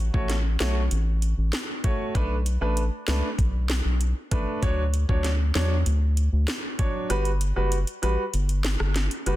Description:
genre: dancehall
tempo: 97 BPM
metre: 4/4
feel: straight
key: B minor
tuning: A4 = 440 Hz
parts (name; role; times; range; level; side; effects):
- round analog bass; bass; 0.0-9.4 s; F#1 to E2; -23 LUFS; equal; none
- clear baby grand piano; accompaniment; 0.1-9.4 s; F#3 to C#5; -29 LUFS; right 1 dB; none
- island pop drum kit; drums; 0.1-9.4 s; hi-hat, kick drum, rim click, snare drum; -28 LUFS; equal; none
room: little or no reverb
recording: dense, heavily limited modern master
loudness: -22 LUFS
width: side -15 dB against mid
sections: 0.0-9.4 A section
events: kick muted 7.1-9.4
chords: 0.0 A6; 2.2 Bm7; 4.6 Dmaj7; 7.1 Gmaj7

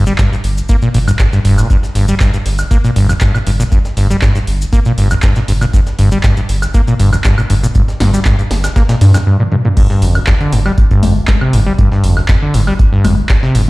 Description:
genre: acid house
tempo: 119 BPM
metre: 4/4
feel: straight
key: G minor pentatonic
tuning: A4 = 441 Hz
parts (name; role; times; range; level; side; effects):
- acid bass, saw; riff; 0.0-13.6 s; G1 to Bb3; -13 LUFS; equal; tube saturation
- round analog bass; bass; 0.0-13.7 s; F1 to G2; -14 LUFS; equal; tube saturation, sidechain pumping
- breakbeat sampler-style drum kit; drums; 0.1-13.7 s; hi-hat, snare drum; -30 LUFS; equal; high-pass filter on snare, sidechain pumping on hats, high-pass filter on hats
- maracas; percussion; 0.1-9.2 s; none; -31 LUFS; left 3 dB; none
- electro analog drum machine; drums; 0.2-13.7 s; congas, crash cymbal, handclaps, hi-hat, snare drum, toms, woodblock; -20 LUFS; left 1 dB; none
- electronic kick drum; drums; 0.2-13.4 s; none; -13 LUFS; equal; none
room: light reverb, digital ambience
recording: played on a big sound system in a bare room, large studio reverb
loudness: -9 LUFS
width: side -21 dB against mid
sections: 0.0-9.8 A section; 9.8-13.7 B section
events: break 9.3-9.8; drum fill 9.4-9.8; drop 9.8-13.7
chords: 0.0 N.C.; 9.8 G7(no3)

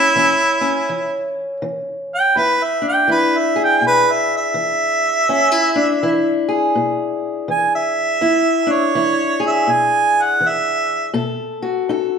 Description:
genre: acoustic country blues, solo or duo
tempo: 82 BPM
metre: 4/4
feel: swing 62% on 8ths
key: E mixolydian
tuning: A4 = 440 Hz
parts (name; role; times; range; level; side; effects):
- mellow harmonica; melody; 0.0-11.2 s; E4 to G#5; -15 LUFS; right 2 dB; none
- fingerpicked steel-string acoustic guitar; accompaniment; 0.0-12.2 s; E2 to A4; -19 LUFS; left 2 dB; none
room: wet recital hall reverb, RT60 1.4 s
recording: minimal, uncompressed stereo recording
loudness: -15 LUFS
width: side -6 dB against mid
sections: 0.0-12.2 A section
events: harmonica solo 0.0-12.2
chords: 0.0 A (rootless); 2.4 E7; 11.2 B7

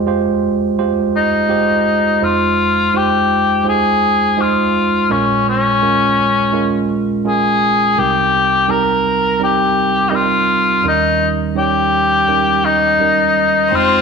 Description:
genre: acoustic folk-pop ballad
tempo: 84 BPM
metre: 4/4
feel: straight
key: F minor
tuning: A4 = 440 Hz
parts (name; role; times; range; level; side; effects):
- tine electric piano; accompaniment; 0.0-14.0 s; F1 to Db5; -17 LUFS; right 6 dB; none
- warm cor anglais; melody; 1.2-14.0 s; Db4 to Bb4; -14 LUFS; left 4 dB; slapback echo
- bright violin; second line; 13.7-14.0 s; C4; -16 LUFS; left 11 dB; none
room: wet echo chamber reverb, RT60 1.6 s, studio ambience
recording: 1960s-style stereo with parts hard left and right, nothing above 10.7 kHz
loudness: -12 LUFS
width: side -5 dB against mid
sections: 0.0-2.2 A section; 2.2-14.0 B section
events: none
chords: 0.0 Fmadd9; 2.2 Fm7; 5.1 Bbm7; 8.0 Cm7; 10.8 Eb7

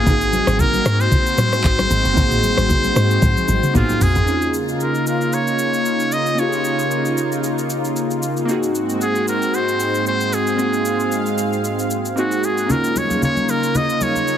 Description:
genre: amapiano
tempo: 114 BPM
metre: 4/4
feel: swing 55% on 16ths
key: Db major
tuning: A4 = 440 Hz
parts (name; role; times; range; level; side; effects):
- trumpet with metal mute; melody; 0.0-14.4 s; F4 to Eb5; -21 LUFS; equal; digital delay
- glassy digital keys; accompaniment; 0.0-14.4 s; Bb3 to Ab4; -23 LUFS; right 1 dB; chorus
- lush unison pad; sustained chords; 0.0-14.4 s; Ab2 to F5; -23 LUFS; equal; chorus, sidechain pumping
- deep log drum bass; bass; 0.0-4.3 s; Gb1 to Ab2; -20 LUFS; equal; none
- smooth R&B drum kit; drums; 0.1-14.4 s; handclaps, hi-hat, kick drum, rim click, shaker, toms; -22 LUFS; equal; none
- congas; percussion; 0.1-4.0, 12.7-14.3 s; none; -24 LUFS; left 2 dB; none
room: light reverb, digital ambience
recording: heavily compressed radio sound, multiband compression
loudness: -16 LUFS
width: side -9 dB against mid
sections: 0.0-4.3 A section; 4.3-14.4 B section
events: drop 0.0-4.3; drum fill 3.2-4.3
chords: 0.1 Ab7; 4.3 Db69; 8.5 Ab7; 12.7 Db69

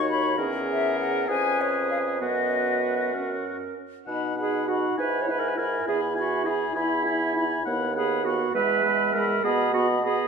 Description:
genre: quick classical-period movement for wind quintet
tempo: 67 BPM (dotted quarters)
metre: 6/8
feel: straight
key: B major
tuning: A4 = 437 Hz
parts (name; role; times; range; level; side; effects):
- silver concert flute; melody; 0.0-10.3 s; C#5 to B5; -30 LUFS; left 6 dB; none
- clear oboe; second line; 0.0-10.3 s; F#4 to G#5; -31 LUFS; left 3 dB; none
- bright clarinet; accompaniment; 0.0-10.3 s; E4 to C#5; -27 LUFS; right 6 dB; none
- mellow French horn; accompaniment; 0.0-10.3 s; G#3 to E4; -32 LUFS; left 2 dB; none
- clear bassoon; bass; 0.0-10.2 s; D#2 to B2; -30 LUFS; right 2 dB; none
room: wet scoring stage reverb, RT60 1.9 s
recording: minimal, uncompressed stereo recording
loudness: -22 LUFS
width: side -6 dB against mid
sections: 0.0-4.1 A section; 4.1-10.3 B section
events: none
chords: 0.4 C#m/E; 1.3 C#7/E#; 2.2 B/F#; 3.1 F#; 4.1 B; 5.0 E/G#; 5.9 E; 7.7 B/D#; 8.6 E; 9.4 B

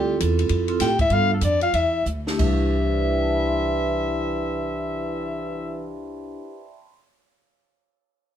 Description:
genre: jazz, small-group swing and bop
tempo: 175-206 BPM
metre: 4/4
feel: swing 63% on 8ths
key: C major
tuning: A4 = 441 Hz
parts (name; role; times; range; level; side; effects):
- warm soprano saxophone; melody; 0.0-5.9 s; G4 to G5; -25 LUFS; left 3 dB; none
- trombone with cup mute; second line; 0.0-5.9 s; E3 to G4; -29 LUFS; right 2 dB; none
- vibraphone with medium mallets; accompaniment; 0.0-7.0 s; A3 to C6; -26 LUFS; right 1 dB; none
- upright bass; bass; 0.0-6.3 s; C2 to A2; -25 LUFS; right 1 dB; none
- compact cocktail drum kit; drums; 0.2-5.1 s; crash cymbal, cymbal swell, hi-hat, kick drum, ride cymbal, snare drum; -29 LUFS; equal; none
room: light reverb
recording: minimal, uncompressed stereo recording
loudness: -20 LUFS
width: side -9 dB against mid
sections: 0.0-2.4 A section; 2.4-5.1 B section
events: slowing down 0.0-2.4; drum fill 2.1-2.4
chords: 0.0 Dm7; 1.1 G7; 2.4 C6

